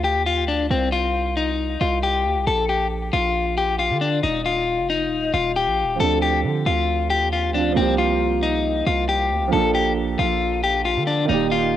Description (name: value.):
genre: hip hop, trap.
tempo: 136 BPM.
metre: 4/4.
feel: half-time.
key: unclear.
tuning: A4 = 442 Hz.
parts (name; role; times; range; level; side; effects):
semi-hollow electric guitar; melody; 0.0-11.8 s; C4 to A4; -20 LUFS; left 4 dB; spring reverb, cassette tape, analog delay.
hard-hitting 808-style bass; bass; 0.0-11.8 s; Eb1 to D3; -25 LUFS; right 2 dB; none.
dark concert grand piano; accompaniment; 6.0-11.8 s; Eb3 to D5; -24 LUFS; right 9 dB; cassette tape.
room: light reverb.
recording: home recording on cassette.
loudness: -18 LUFS.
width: side -11 dB against mid.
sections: 0.0-11.8 A section.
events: none.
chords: 0.0 Dm; 0.7 Csus4; 2.5 Bb; 4.2 Eb; 6.0 Dm7; 7.8 C7sus4; 9.5 Bbmaj7.